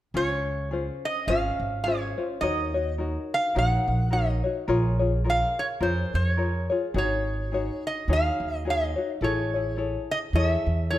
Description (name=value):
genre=Hawaiian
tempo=106 BPM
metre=4/4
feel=swing 57% on 8ths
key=Db major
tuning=A4 = 440 Hz
part: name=tenor ukulele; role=accompaniment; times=0.1-11.0 s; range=Db4 to Db5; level=-29 LUFS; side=left 4 dB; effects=none
part: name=upright bass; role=bass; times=0.1-11.0 s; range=Ab1 to F2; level=-27 LUFS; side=right 1 dB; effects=none
part: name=lap resonator guitar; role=melody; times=0.2-11.0 s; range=C5 to Gb5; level=-27 LUFS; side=right 1 dB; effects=none
room=light reverb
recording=none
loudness=-23 LUFS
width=side -14 dB against mid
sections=0.2-11.0 A section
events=none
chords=0.2 Dbmaj7; 2.4 Ebm7; 4.7 Bbm7; 7.0 Ab7sus4; 9.2 Amaj7